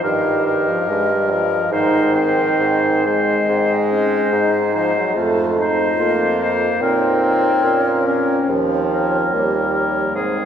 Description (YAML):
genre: classical, slow romantic movement for wind quintet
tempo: 72 BPM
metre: 4/4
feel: rubato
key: unclear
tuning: A4 = 440 Hz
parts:
  - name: mellow hollow concert flute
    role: melody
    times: 0.0-10.5 s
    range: C5 to Eb5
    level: -24 LUFS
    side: left 5 dB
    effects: none
  - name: warm oboe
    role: second line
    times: 0.0-10.5 s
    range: Ab4 to C5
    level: -23 LUFS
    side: left 1 dB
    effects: none
  - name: clear French horn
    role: accompaniment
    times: 0.0-10.5 s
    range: Eb3 to Db4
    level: -20 LUFS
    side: left 1 dB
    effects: none
  - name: warm clarinet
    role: accompaniment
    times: 0.0-10.5 s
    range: Bb3 to G4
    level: -25 LUFS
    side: right 5 dB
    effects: none
  - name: warm bassoon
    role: bass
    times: 0.0-10.5 s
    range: Eb2 to Bb2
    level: -20 LUFS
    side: right 2 dB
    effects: none
room: wet cathedral reverb, RT60 5.0 s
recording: recorded in a church or concert hall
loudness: -15 LUFS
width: side -8 dB against mid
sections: 0.0-10.5 A section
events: none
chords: 0.0 Eb/G; 1.7 Ab; 5.2 F5; 6.8 Bbm; 8.5 Eb7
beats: 0.04 0.89 | 1.72 2.60 3.49 4.32 | 5.16 5.99 6.81 7.64 | 8.50 9.33 10.16